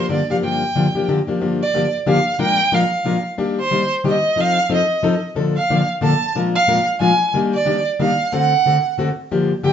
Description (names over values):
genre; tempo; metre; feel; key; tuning
jazz; 182 BPM; 3/4; swing 61% on 8ths; G minor; A4 = 443 Hz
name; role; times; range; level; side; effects
clear violin; melody; 0.0-9.7 s; C5 to A5; -18 LUFS; right 2 dB; none
picked plugged-in steel-string acoustic guitar; accompaniment; 0.0-9.7 s; G2 to Bb4; -18 LUFS; left 3 dB; none
room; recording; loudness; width
wet studio reverb, RT60 0.6 s; heard from further back in the room, nothing above 7.7 kHz; -15 LUFS; side -8 dB against mid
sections
0.0-1.4 A section; 1.4-9.3 B section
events
none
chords
0.0 Gm7; 2.4 Bb7; 3.4 Ebmaj7; 4.4 F7; 5.4 Bbmaj7; 6.3 Bb7; 7.3 Ebmaj7; 8.3 D7